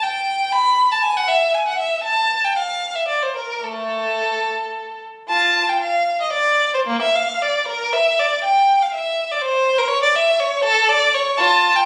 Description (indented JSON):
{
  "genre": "classical, baroque-style suite movement for unaccompanied violin",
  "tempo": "102-125 BPM",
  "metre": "3/4",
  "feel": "rubato",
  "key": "unclear",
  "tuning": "A4 = 443 Hz",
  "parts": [
    { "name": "rich violin", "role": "solo", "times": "0.0-11.9 s", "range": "A3 to B5", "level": "-18 LUFS", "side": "equal", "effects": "none" }
  ],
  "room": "moderate recital hall reverb, RT60 1.4 s",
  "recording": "recorded on a phone in the room, studio ambience",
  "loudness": "-18 LUFS",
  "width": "mono",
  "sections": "0.0-5.3 A section; 5.3-11.9 B section",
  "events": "none",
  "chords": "none"
}